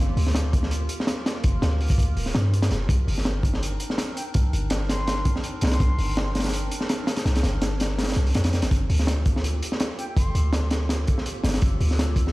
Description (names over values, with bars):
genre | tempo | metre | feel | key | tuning
drum and bass, jungle | 165 BPM | 4/4 | swing 54% on 16ths | G minor | A4 = 441 Hz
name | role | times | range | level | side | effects
warbly tape-like pad | sustained chords | 0.0-12.3 s | Bb3 to Bb4 | -35 LUFS | right 1 dB | chorus, built-in reverb
warm 808-style bass | bass | 0.0-12.3 s | D1 to G2 | -23 LUFS | equal | none
crunchy breakbeat drum kit | drums | 0.2-12.3 s | hi-hat, kick drum, snare drum | -24 LUFS | equal | none
silver concert flute | melody | 4.2-6.2, 10.0-10.7 s | G5 to C6 | -36 LUFS | left 1 dB | dub echo
room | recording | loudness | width
small room ambience | played on a big sound system in a bare room, stone room reverb | -21 LUFS | side -20 dB against mid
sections
0.0-12.3 A section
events
none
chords
0.0 Gm7; 2.9 Cm9; 8.7 Gm9